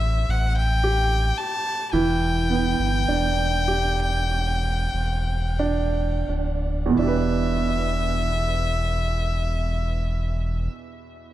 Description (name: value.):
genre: pop ballad.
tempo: 43-56 BPM.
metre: 4/4.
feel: straight.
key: E minor.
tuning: A4 = 440 Hz.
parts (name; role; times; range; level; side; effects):
warm violin; melody; 0.0-10.7 s; E5 to A5; -27 LUFS; left 2 dB; tape echo.
clear baby grand piano; accompaniment; 0.0-11.3 s; E2 to C5; -26 LUFS; right 4 dB; tape echo.
sub bass with octave; bass; 0.0-10.7 s; D1 to A1; -24 LUFS; equal; none.
room: light reverb.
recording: echo-heavy mix.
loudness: -21 LUFS.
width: side -13 dB against mid.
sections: 0.0-7.0 A section; 7.0-11.3 B section.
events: slowing down 0.0-7.0.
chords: 0.0 Am7; 1.9 Em7.